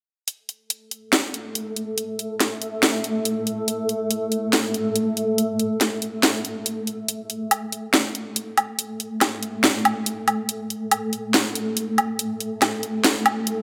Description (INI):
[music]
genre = deep dubstep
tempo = 141 BPM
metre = 4/4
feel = swing 58% on 16ths, half-time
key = unclear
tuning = A4 = 440 Hz
[part]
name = granular cloud pad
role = sustained chords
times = 1.4-13.6 s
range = A3 to A4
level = -28 LUFS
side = equal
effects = built-in reverb
[part]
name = garage drum kit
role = drums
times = 0.3-13.6 s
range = hi-hat, snare drum, woodblock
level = -23 LUFS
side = equal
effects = none
[sound]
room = wet echo chamber reverb, RT60 2.0 s, digital ambience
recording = none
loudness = -23 LUFS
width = mono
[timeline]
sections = 0.3-7.1 A section; 7.1-13.6 B section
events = build-up 7.1-13.6; filter sweep on ambient pad 7.1-13.6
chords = none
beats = | 0.28 0.70 1.13 1.55 | 1.98 2.40 2.83 3.25 | 3.68 4.11 4.53 4.96 | 5.38 5.81 6.23 6.66 | 7.08 7.51 7.93 8.36 | 8.79 9.21 9.64 10.06 | 10.49 10.91 11.34 11.77 | 12.19 12.62 13.04 13.47